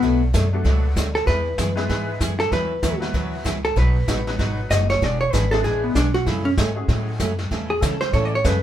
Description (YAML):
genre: country, western swing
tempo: 192 BPM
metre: 4/4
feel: swing 60% on 8ths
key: unclear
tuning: A4 = 440 Hz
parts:
  - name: vintage hollow-body jazz guitar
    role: melody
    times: 0.0-8.6 s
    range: B3 to D#5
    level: -22 LUFS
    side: equal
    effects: none
  - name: picked steel-string acoustic guitar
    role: accompaniment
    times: 0.0-8.6 s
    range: B2 to B4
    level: -28 LUFS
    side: right 3 dB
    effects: none
  - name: upright bass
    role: bass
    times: 0.0-8.6 s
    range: E1 to C#3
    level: -22 LUFS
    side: equal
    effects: none
  - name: vintage brush drum kit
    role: drums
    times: 0.0-8.6 s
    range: brushed snare drum, hi-hat, kick drum, snare drum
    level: -26 LUFS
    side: equal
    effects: none
  - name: honky-tonk upright piano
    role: accompaniment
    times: 0.5-7.2 s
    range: F#3 to B4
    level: -30 LUFS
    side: left 2 dB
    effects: none
room: moderate studio ambience, RT60 0.5 s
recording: band playing live in one room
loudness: -18 LUFS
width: side -11 dB against mid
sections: 0.0-8.6 A section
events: hollow-body jazz guitar solo 0.0-8.6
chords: 0.0 Bm7; 1.3 E; 2.5 Esus2; 3.8 B; 5.0 E7; 6.3 F#madd9; 7.5 A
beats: | 0.03 0.34 0.65 0.96 | 1.27 1.58 1.90 2.21 | 2.52 2.83 3.15 3.46 | 3.77 4.08 4.39 4.71 | 5.02 5.33 5.64 5.96 | 6.27 6.58 6.89 7.20 | 7.51 7.83 8.14 8.45